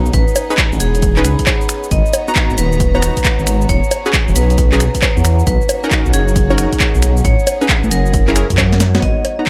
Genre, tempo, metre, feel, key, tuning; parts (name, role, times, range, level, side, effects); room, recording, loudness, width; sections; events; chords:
UK garage, two-step garage; 135 BPM; 4/4; swing 65% on 16ths; A4 = 440 Hz
vibraphone with hard mallets; melody; 0.0-9.3 s; G#4 to D#5; -25 LUFS; equal; delay
clear studio violin section; sustained chords; 0.0-9.0 s; A#3 to A#5; -32 LUFS; equal; sidechain pumping
punchy chord stab; stabs; 0.0-9.5 s; B3 to A#5; -23 LUFS; equal; chorus
dark detuned saw bass; bass; 0.0-9.1 s; D#1 to F#2; -17 LUFS; equal
warbly tape-like pad; texture; 0.0-9.5 s; C#5 to B5; -30 LUFS; equal; chorus, built-in reverb, sidechain pumping
electronic kick drum; drums; 0.1-9.5 s; -19 LUFS; equal
punchy analog drum machine; drums; 0.1-9.5 s; bongos, cabasa, finger snaps, handclaps, hi-hat, snare drum; -20 LUFS; equal
light reverb; -14 LUFS; mono
0.0-9.0 A section
drop 0.0-9.0; drum fill 8.7-9.0
0.1 Amaj9#11; 1.9 G#m9; 3.7 E6; 5.5 Bmaj7; 7.2 Amaj9#11; 8.1 F#9